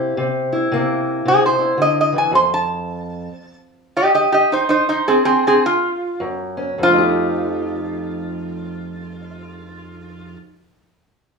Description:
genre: acoustic country blues, solo or duo.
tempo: 100-112 BPM.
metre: 4/4.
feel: swing 61% on 8ths.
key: F mixolydian.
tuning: A4 = 440 Hz.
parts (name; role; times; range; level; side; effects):
fingerpicked steel-string acoustic guitar; accompaniment; 0.0-10.6 s; F2 to G4; -22 LUFS; left 1 dB; none.
metal-body resonator slide guitar; melody; 1.3-10.4 s; C4 to C6; -15 LUFS; right 1 dB; none.
room: moderate large studio reverb, RT60 0.9 s.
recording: band playing live in one room, studio reverb.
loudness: -15 LUFS.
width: side -4 dB against mid.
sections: 0.0-6.8 A section; 6.8-11.4 B section.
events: slowing down 2.3-6.8.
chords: 0.0 C7; 2.3 F7; 6.2 Gb5; 6.8 F9.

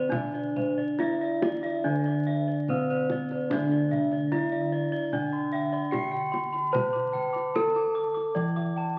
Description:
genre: Javanese gamelan.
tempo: 67-74 BPM.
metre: 4/4.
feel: straight.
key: D slendro.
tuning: A4 = 440 Hz.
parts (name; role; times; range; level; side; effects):
gamelan-type bronze metallophone; melody; 0.0-9.0 s; C4-45c to D5; -31 LUFS; equal; none.
gamelan-type bossed gongs; arpeggios; 0.0-9.0 s; C5-45c to D6; -39 LUFS; equal; none.
gamelan-type bronze metallophone; arpeggios; 0.0-9.0 s; C5-45c to D6; -34 LUFS; equal; none.
gamelan-type bossed gongs; bass; 0.0-9.0 s; D2 to C5-45c; -34 LUFS; equal; none.
kendang; percussion; 0.1-8.7 s; none; -37 LUFS; equal; none.
room: wet large studio reverb, RT60 1.4 s.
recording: very old 78 rpm record, vinyl crackle.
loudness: -28 LUFS.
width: mono.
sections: 0.0-3.5 A section; 3.5-9.0 B section.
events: none.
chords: none.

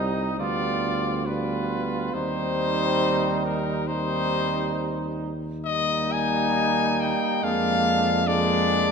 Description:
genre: classical, hymn-like piece for brass band.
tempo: 61-74 BPM.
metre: 4/4.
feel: rubato.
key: C minor.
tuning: A4 = 440 Hz.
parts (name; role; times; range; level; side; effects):
clear cornet; melody; 0.0-8.9 s; Bb4 to Ab5; -26 LUFS; left 6 dB; none.
warm flugelhorn; second line; 0.0-8.9 s; D4 to F4; -30 LUFS; right 8 dB; none.
mellow euphonium; accompaniment; 0.0-8.9 s; Bb3 to C4; -31 LUFS; left 2 dB; none.
warm trombone; accompaniment; 0.0-8.9 s; G3 to Ab3; -30 LUFS; right 4 dB; none.
mellow tuba; bass; 0.0-8.9 s; C2 to F2; -30 LUFS; equal; none.
room: moderate concert hall reverb, RT60 2.3 s.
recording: minimal, uncompressed stereo recording.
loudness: -22 LUFS.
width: side -6 dB against mid.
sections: 0.0-8.9 A section.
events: none.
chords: 0.4 G7/D; 2.1 Cm/Eb; 5.6 Eb; 7.4 Bb7/F.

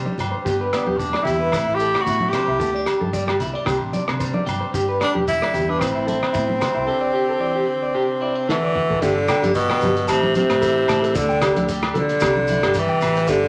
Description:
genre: highlife guitar band.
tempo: 112 BPM.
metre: 4/4.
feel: swing 54% on 16ths.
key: G major.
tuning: A4 = 439 Hz.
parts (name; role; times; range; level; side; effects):
electric guitar at the edge of break-up; accompaniment; 0.0-13.5 s; F#2 to G4; -32 LUFS; equal; none.
vintage muted fingered electric bass; bass; 0.0-13.5 s; E1 to D3; -32 LUFS; equal; none.
electric guitar through a small old amp; arpeggios; 0.1-13.4 s; E4 to A5; -27 LUFS; equal; none.
congas; percussion; 0.1-13.4 s; none; -31 LUFS; equal; none.
cloth-damped thuddy drum kit; drums; 0.2-13.4 s; hi-hat, kick drum, rim click, snare drum, toms; -31 LUFS; equal; none.
agogo bells; percussion; 0.2-13.2 s; none; -33 LUFS; equal; none.
maracas; percussion; 0.2-13.5 s; none; -42 LUFS; equal; none.
breathy tenor saxophone; melody; 0.7-13.5 s; B2 to G4; -22 LUFS; equal; none.
room: wet large studio reverb, RT60 0.9 s.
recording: none.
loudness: -20 LUFS.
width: mono.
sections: 0.0-9.0 A section; 9.0-13.5 B section.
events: drum fill 8.5-9.0.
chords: 0.5 G; 1.5 Am; 2.6 Dsus4; 3.7 Csus2; 4.7 G; 5.8 Am; 6.9 Dsus4; 8.0 Csus2; 8.5 D; 9.0 G; 10.1 Am; 11.2 Dsus4; 12.2 Csus2.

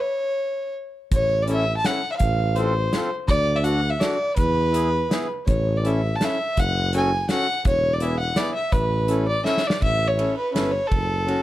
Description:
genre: alpine folk, alpine dance band.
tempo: 165 BPM.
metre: 3/4.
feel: straight.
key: A major.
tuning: A4 = 438 Hz.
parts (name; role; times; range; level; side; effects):
dark fiddle; melody; 0.0-11.4 s; A4 to A5; -23 LUFS; equal; plate reverb.
mellow tuba; bass; 1.1-11.4 s; E1 to E2; -24 LUFS; equal; none.
loose indie drum kit; drums; 1.1-11.4 s; hi-hat, kick drum, ride cymbal, snare drum; -25 LUFS; equal; none.
accordion; accompaniment; 1.5-11.4 s; B3 to A4; -27 LUFS; left 1 dB; none.
room: moderate studio reverb, RT60 0.5 s.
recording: none.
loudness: -20 LUFS.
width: side -14 dB against mid.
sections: 0.0-1.1 A section; 1.1-9.8 B section; 9.8-11.4 A section.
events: stop 0.0-1.1; drum fill 9.4-9.8.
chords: 0.0 N.C.; 1.1 A; 2.2 F/A; 3.3 D; 4.4 E; 5.5 A; 6.6 F#m; 7.7 E; 8.7 Aadd9; 9.8 A; 10.9 F#m.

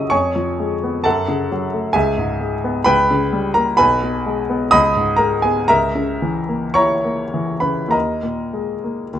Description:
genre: classical, romantic character piece for solo piano.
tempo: 48-68 BPM.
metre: 2/4.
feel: rubato.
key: unclear.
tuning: A4 = 442 Hz.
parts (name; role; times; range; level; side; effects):
clear grand piano; solo; 0.0-9.2 s; B1 to E6; -16 LUFS; equal; none.
room: light reverb.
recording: dark, warm production, nothing above 10.3 kHz.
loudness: -16 LUFS.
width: side -10 dB against mid.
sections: 0.0-9.2 A section.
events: none.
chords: 0.1 C#7/E#; 1.1 F#m; 2.0 C#m7; 2.9 Gdim/Db; 3.8 G#m/B; 4.7 C#5; 5.7 A#dim/C#; 7.9 D#sus4.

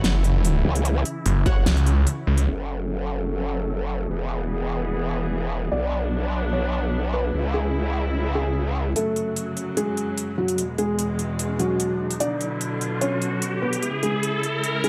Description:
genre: heavy wobble dubstep.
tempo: 148 BPM.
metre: 4/4.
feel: half-time.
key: F# minor.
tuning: A4 = 439 Hz.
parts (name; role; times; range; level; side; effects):
rich chamber string section; sustained chords; 0.0-14.9 s; E2 to A4; -31 LUFS; equal; sidechain pumping, low-pass filter.
snarling distorted saw bass; bass; 0.0-2.5 s; F#1 to C#2; -21 LUFS; equal; distortion, overdrive.
big-room dance drum kit; drums; 0.0-2.5, 9.0-14.9 s; hi-hat, snare drum; -31 LUFS; equal; none.
growl bass; bass; 0.6-8.9 s; E1 to C#2; -27 LUFS; equal; chorus, overdrive.
orchestra-hit-like synth stab; stabs; 1.5-1.6 s; F#4 to F#5; -38 LUFS; equal; built-in reverb, dub echo.
electronic kick drum; drums; 1.5 s; none; -24 LUFS; equal; none.
felt-muted upright piano; melody; 5.7-14.9 s; F#3 to D5; -29 LUFS; equal; none.
riser; sound effects; 10.6-14.9 s; none; -32 LUFS; equal; none.
room: light reverb, digital ambience.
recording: dark, warm production.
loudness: -24 LUFS.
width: mono.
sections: 0.0-2.5 A section; 2.5-9.0 B section; 9.0-14.9 C section.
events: drop 0.0-2.5; kick drops out 1.7-2.5; filter sweep on string section 2.5-9.0; build-up 9.0-14.9; riser 10.6-14.9.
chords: 0.0 F#5; 2.5 F#m; 4.1 E; 5.7 Bm; 7.3 C#m; 9.0 F#m; 10.6 E; 12.2 Bm; 13.8 C#m.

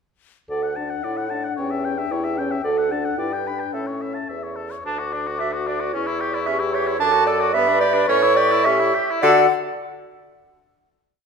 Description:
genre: quick classical-period movement for wind quintet.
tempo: 102-114 BPM.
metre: 2/4.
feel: straight.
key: D major.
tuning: A4 = 441 Hz.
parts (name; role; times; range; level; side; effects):
mellow hollow silver concert flute; melody; 0.5-9.5 s; E5 to D6; -25 LUFS; left 8 dB; none.
clear oboe; second line; 0.5-9.5 s; B3 to B5; -27 LUFS; left 4 dB; none.
mellow French horn; accompaniment; 0.5-9.5 s; C#4 to B4; -26 LUFS; left 1 dB; none.
warm clarinet; accompaniment; 0.5-9.5 s; G4 to A5; -23 LUFS; right 6 dB; none.
clear bassoon; bass; 0.5-9.5 s; D2 to D3; -26 LUFS; right 2 dB; none.
room: wet recital hall reverb, RT60 1.7 s.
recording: minimal, uncompressed stereo recording.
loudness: -18 LUFS.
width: side -5 dB against mid.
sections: 0.5-4.9 A section; 4.9-9.2 A section; 9.2-10.4 final chord.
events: slowing down 6.5-9.2.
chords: 0.5 D; 1.6 C#dim/E; 2.6 D; 3.2 G; 3.7 A; 4.9 D; 5.9 C#dim/E; 7.0 D/F#; 7.5 G; 8.1 A7; 9.2 D.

